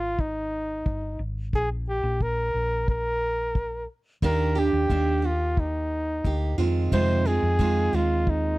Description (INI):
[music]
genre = acoustic pop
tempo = 89 BPM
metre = 4/4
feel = straight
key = Eb major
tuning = A4 = 440 Hz
[part]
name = warm flugelhorn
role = melody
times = 0.0-8.6 s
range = Eb4 to C5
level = -27 LUFS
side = equal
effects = none
[part]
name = hollow-body short-scale fingered electric bass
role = bass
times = 0.0-8.6 s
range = G1 to F2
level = -27 LUFS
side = equal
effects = none
[part]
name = kick drum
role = drums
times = 0.2-8.4 s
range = none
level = -26 LUFS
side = equal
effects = none
[part]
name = picked steel-string acoustic guitar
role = accompaniment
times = 4.2-8.6 s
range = F2 to G4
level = -27 LUFS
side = right 4 dB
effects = none
[sound]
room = little or no reverb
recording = dry, close 1970s-style studio recording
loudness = -23 LUFS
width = side -19 dB against mid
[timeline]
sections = 0.0-8.6 A section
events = none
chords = 0.0 Ab5; 1.5 N.C.; 4.2 Ebmaj7; 6.6 Fm7